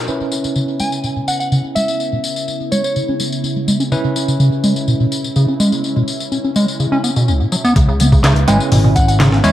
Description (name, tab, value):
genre	breakbeat, breaks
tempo	125 BPM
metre	4/4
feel	straight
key	C# minor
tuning	A4 = 437 Hz
part	phased analog pad	sustained chords	0.0-9.5 s	C#3 to E4	-24 LUFS	right 1 dB	phaser, chorus, sidechain pumping
part	deep acid bass	riff	0.1-9.5 s	C#2 to C#4	-16 LUFS	equal	tape echo
part	bell-like tine electric piano	stabs	0.1-9.5 s	C#4 to C#5	-23 LUFS	right 2 dB	medium stereo tremolo, low-pass filter, tape echo
part	electronic tambourine and handclaps	drums	0.1-9.5 s	none	-24 LUFS	left 4 dB	tape echo
part	soft synth bell	melody	0.8-2.9, 8.5-9.5 s	C#5 to G#5	-21 LUFS	equal	chorus, phaser, old record sound, tape echo
part	fingered electric bass	bass	7.8-9.5 s	G#1 to E2	-14 LUFS	equal	tube saturation
part	breakbeat sampler-style drum kit	drums	7.8-9.5 s	hi-hat, kick drum, snare drum	-16 LUFS	equal	none
room	moderate spring reverb, RT60 1.6 s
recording	echo-heavy mix, vinyl crackle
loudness	-13 LUFS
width	side -13 dB against mid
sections	0.1-7.8 A section; 7.8-9.5 B section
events	filter sweep on acid bass 0.1-7.8; filter sweep on tine electric piano 0.1-7.8; drop 7.8-9.5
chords	0.1 C#m7